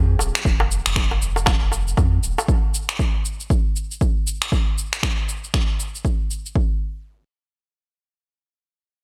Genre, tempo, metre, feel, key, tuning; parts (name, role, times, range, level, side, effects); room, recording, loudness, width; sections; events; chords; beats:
afro house; 118 BPM; 4/4; swing 60% on 16ths; F minor; A4 = 440 Hz
warm sub bass; bass; 0.0-2.4 s; Eb1 to F2; -25 LUFS; equal; sidechain pumping
electronic shaker and finger snaps; drums; 0.2-6.5 s; -28 LUFS; equal; small room ambience, gated reverb
darbuka; percussion; 0.2-2.5 s; -30 LUFS; equal
electronic kick drum; drums; 0.5-6.7 s; -23 LUFS; equal; small room ambience
little or no reverb; bright 1980s-style digital production; -21 LUFS; mono
0.0-6.6 A section; 6.6-9.0 B section
| 0.45 0.96 1.47 1.98 | 2.49 2.99 3.50 4.01 | 4.52 5.03 5.54 6.04 | 6.55